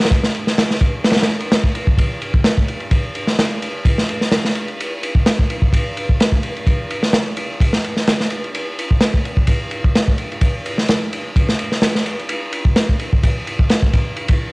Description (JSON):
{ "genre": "breakbeat", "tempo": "128 BPM", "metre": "4/4", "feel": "straight", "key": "none", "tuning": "none", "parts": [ { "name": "crunchy breakbeat drum kit", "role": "drums", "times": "0.0-14.4 s", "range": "kick drum, ride cymbal, snare drum", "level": "-15 LUFS", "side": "equal", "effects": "cassette tape" } ], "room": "light reverb", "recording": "home recording on cassette", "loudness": "-15 LUFS", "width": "side -28 dB against mid", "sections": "0.0-14.5 A section", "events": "none", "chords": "none", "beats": "| 0.11 0.58 1.05 1.51 | 1.98 2.45 2.92 3.39 | 3.86 4.33 4.80 5.26 | 5.73 6.20 6.67 7.14 | 7.61 8.08 8.55 9.02 | 9.48 9.95 10.42 10.89 | 11.36 11.83 12.30 12.77 | 13.23 13.70 14.17" }